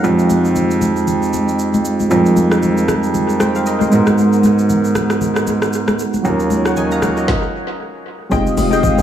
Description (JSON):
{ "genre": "amapiano", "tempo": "116 BPM", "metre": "4/4", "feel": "swing 58% on 16ths", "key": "unclear", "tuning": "A4 = 441 Hz", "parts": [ { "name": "soft electric-piano-like synth keys", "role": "accompaniment", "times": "0.0-9.0 s", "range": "Gb3 to Bb5", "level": "-16 LUFS", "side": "right 2 dB", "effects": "chorus, low-pass filter, tape echo" }, { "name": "warm grand piano", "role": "bass", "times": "0.0-7.3 s", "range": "Eb2 to Ab2", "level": "-17 LUFS", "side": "right 1 dB", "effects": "none" }, { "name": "afro-pop drum kit", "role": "drums", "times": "0.0-9.0 s", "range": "hi-hat, kick drum, rim click, shaker, snare drum", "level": "-23 LUFS", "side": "equal", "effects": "overdrive, tape echo" }, { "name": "congas", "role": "percussion", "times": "0.3-9.0 s", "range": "none", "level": "-23 LUFS", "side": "left 3 dB", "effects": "tape echo" }, { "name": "airy breathy pad", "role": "sustained chords", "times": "8.3-9.0 s", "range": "Ab3 to Eb6", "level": "-20 LUFS", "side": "left 4 dB", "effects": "chorus, sidechain pumping" }, { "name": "deep mellow chord stab", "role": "stabs", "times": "8.3-9.0 s", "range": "Ab4 to G5", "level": "-19 LUFS", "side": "left 7 dB", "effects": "chorus, tape echo" }, { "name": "hollow log drum bass", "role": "bass", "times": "8.3-9.0 s", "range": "F1 to Ab1", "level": "-20 LUFS", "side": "equal", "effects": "none" } ], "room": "light reverb", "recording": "echo-heavy mix, small room reverb", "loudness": "-13 LUFS", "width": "side -10 dB against mid", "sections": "0.0-8.3 A section", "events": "filter sweep on synth keys 0.0-8.3; stop 7.3-8.3", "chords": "0.0 Fm9; 3.9 Abm9; 6.2 Ebm9; 8.3 Fm9", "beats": "| 0.04 0.56 1.07 1.59 | 2.11 2.63 3.14 3.66 | 4.18 4.70 5.21 5.73 | 6.25 6.76 7.28 7.80 | 8.32 8.83" }